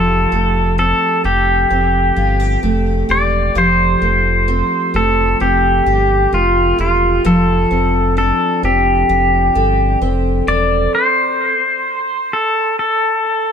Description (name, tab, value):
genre	dream pop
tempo	65 BPM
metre	4/4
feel	straight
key	unclear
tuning	A4 = 442 Hz
part	pedal steel guitar	melody	0.0-13.5 s	F4 to D5	-15 LUFS	left 1 dB	digital delay
part	picked twelve-string acoustic guitar	arpeggios	0.0-11.5 s	F3 to A4	-19 LUFS	equal	wide subtle chorus, digital delay
part	sub bass with octave	bass	0.0-10.9 s	E1 to G1	-18 LUFS	equal	none
room	light reverb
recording	none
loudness	-12 LUFS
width	side -7 dB against mid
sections	0.0-13.5 A section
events	stop 10.9-13.5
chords	0.0 Fadd9; 7.2 Dm7/F; 10.9 N.C.